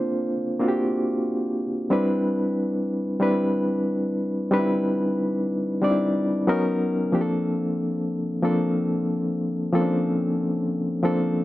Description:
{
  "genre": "soul",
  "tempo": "92 BPM",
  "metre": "4/4",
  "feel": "swing 54% on 16ths",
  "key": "unclear",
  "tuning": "A4 = 439 Hz",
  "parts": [
    { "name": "barky reed electric piano", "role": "solo", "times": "0.0-11.4 s", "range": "F3 to D5", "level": "-22 LUFS", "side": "equal", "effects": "overdrive, fast tremolo" }
  ],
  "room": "little or no reverb",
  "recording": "dry, close 1970s-style studio recording",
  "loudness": "-22 LUFS",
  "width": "side -16 dB against mid",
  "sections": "0.0-11.4 A section",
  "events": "none",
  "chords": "0.0 Bbmaj9; 1.9 Cmaj7; 6.5 Bmaj9; 7.1 Bbmaj9"
}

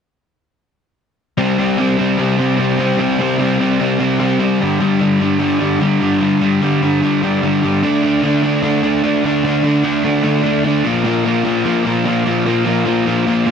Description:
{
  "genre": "punk",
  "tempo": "149 BPM",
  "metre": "4/4",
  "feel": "straight",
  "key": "unclear",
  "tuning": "A4 = 438 Hz",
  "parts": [
    { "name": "crunchy overdriven guitar", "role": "riff", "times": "1.4-13.5 s", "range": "G2 to D4", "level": "-16 LUFS", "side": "right 8 dB", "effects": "none" },
    { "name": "overdriven semi-hollow guitar", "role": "riff", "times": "1.4-13.5 s", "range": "G2 to D4", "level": "-16 LUFS", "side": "left 7 dB", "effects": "none" }
  ],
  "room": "moderate studio reverb, RT60 0.6 s",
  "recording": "dense, heavily limited modern master",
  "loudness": "-13 LUFS",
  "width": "side -7 dB against mid",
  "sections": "1.4-13.5 A section",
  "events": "none",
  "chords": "1.4 C5; 4.6 G5; 7.8 D5; 10.8 Bb5"
}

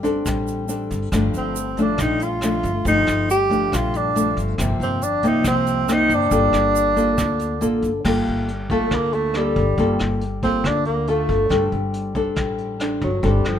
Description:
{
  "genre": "bossa nova",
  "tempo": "139 BPM",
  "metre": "4/4",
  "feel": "straight",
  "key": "G minor",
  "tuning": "A4 = 440 Hz",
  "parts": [
    { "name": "nylon-string guitar", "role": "accompaniment", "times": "0.0-13.6 s", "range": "F2 to A4", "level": "-22 LUFS", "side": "left 1 dB", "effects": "none" },
    { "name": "upright bass", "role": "bass", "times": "0.0-13.6 s", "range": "G1 to D2", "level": "-26 LUFS", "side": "equal", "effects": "none" },
    { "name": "vintage brush drum kit", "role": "drums", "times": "0.0-13.6 s", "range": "crash cymbal, hi-hat, kick drum, rim click", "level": "-29 LUFS", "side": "equal", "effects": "none" },
    { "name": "egg shaker", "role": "percussion", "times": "0.0-8.1 s", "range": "none", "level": "-35 LUFS", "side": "right 10 dB", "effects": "none" },
    { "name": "breathy tenor saxophone", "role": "melody", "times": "1.4-13.6 s", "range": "F3 to G4", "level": "-21 LUFS", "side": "right 1 dB", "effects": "none" }
  ],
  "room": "light reverb",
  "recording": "minimal, uncompressed stereo recording",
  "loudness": "-18 LUFS",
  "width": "side -9 dB against mid",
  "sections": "0.0-8.1 A section; 8.1-13.6 B section",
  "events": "tenor saxophone solo 8.1-13.6",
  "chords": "0.0 D7sus4/G; 1.1 Ebmaj9#11/G (rootless); 4.6 Fsus4/G; 6.3 Gm9; 11.5 D7sus4/G"
}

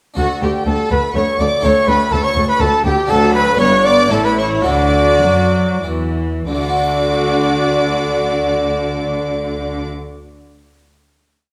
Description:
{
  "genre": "classical, baroque-style concerto movement with solo episodes",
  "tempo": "90-124 BPM",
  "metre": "3/4",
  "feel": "straight",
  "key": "D major",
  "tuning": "A4 = 435 Hz",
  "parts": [
    { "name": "harpsichord", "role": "accompaniment", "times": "0.1-10.2 s", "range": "D2 to F#5", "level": "-27 LUFS", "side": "equal", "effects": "none" },
    { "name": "dark trumpet", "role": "melody", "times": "0.2-9.8 s", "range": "F#4 to D5", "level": "-20 LUFS", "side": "equal", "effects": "none" },
    { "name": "warm chamber violin section", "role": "melody", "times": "0.2-9.8 s", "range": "F#5 to D6", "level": "-26 LUFS", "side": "equal", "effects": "none" },
    { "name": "rich chamber violin section", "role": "second line", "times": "0.2-9.8 s", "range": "F#4 to D5", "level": "-24 LUFS", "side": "equal", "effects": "none" },
    { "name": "rich chamber viola section", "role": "accompaniment", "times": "0.2-9.9 s", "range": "F#3 to F#4", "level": "-24 LUFS", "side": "equal", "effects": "none" },
    { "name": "dark chamber double bass section", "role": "bass", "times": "0.2-9.8 s", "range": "G1 to F#2", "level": "-25 LUFS", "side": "equal", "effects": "none" },
    { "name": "warm chamber cello section", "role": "bass", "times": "0.2-9.8 s", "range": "D2 to F#3", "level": "-23 LUFS", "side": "equal", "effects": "none" }
  ],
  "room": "wet recital hall reverb, RT60 1.4 s",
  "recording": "none",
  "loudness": "-15 LUFS",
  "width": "mono",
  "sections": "0.2-6.5 ritornello; 6.5-10.5 final chord",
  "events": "slowing down 2.4-6.5",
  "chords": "0.2 D; 1.6 A5/D; 3.1 D; 3.6 G; 4.1 A; 4.7 D"
}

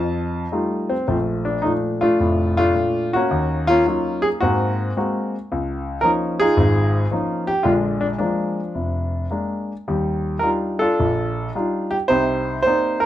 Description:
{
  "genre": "solo jazz",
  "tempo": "109 BPM",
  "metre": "4/4",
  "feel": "swing 69% on 8ths, rubato",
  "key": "Bb major",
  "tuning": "A4 = 437 Hz",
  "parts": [
    { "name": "clear grand piano", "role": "solo", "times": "0.0-13.1 s", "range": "F1 to A5", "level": "-18 LUFS", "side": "equal", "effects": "none" }
  ],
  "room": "moderate large studio reverb, RT60 0.9 s",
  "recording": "dark, warm production",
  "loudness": "-18 LUFS",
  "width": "side -12 dB against mid",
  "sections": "0.0-1.1 A section; 1.1-13.1 A section",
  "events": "none",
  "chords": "0.0 F9; 1.1 Bbmaj7; 3.3 Ebm9; 4.4 Ab9; 5.5 Db69; 7.6 Bb7; 9.9 Ebmaj9; 12.1 Cm9"
}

